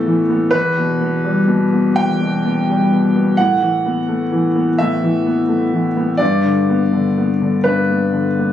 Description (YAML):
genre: neoclassical minimalist piano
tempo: 84 BPM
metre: 4/4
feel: rubato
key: unclear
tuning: A4 = 440 Hz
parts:
  - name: warm concert grand piano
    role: solo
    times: 0.0-8.5 s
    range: E2 to G5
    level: -14 LUFS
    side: left 1 dB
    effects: none
room: light reverb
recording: recorded on a phone in the room, studio ambience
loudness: -14 LUFS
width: side -10 dB against mid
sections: 0.0-8.5 A section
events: none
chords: 0.0 Asus2; 0.5 Em; 3.4 Asus2; 6.2 G